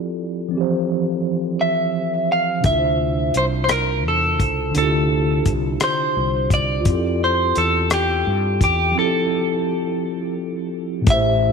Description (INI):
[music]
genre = slow six-eight R&B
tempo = 57 BPM (dotted quarters)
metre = 6/8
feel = straight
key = unclear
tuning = A4 = 440 Hz
[part]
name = mellow tine electric piano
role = accompaniment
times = 0.0-11.5 s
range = A2 to C5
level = -22 LUFS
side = right 1 dB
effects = medium stereo tremolo
[part]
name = clean electric guitar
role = melody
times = 1.6-11.5 s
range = G4 to F5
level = -20 LUFS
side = equal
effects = wide subtle chorus
[part]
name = fretless electric bass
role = bass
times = 2.6-11.5 s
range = A1 to G2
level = -23 LUFS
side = right 1 dB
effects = transformer saturation
[part]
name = damped 70s drum kit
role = drums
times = 2.6-11.2 s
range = hi-hat, kick drum, rim click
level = -21 LUFS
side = left 2 dB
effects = none
[sound]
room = light reverb, small room reverb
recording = 1960s-style stereo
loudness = -17 LUFS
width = side -5 dB against mid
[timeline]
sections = 0.0-11.1 A section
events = break 9.0-11.1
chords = 0.0 Fmaj9; 2.6 Dm9; 6.9 Fmaj9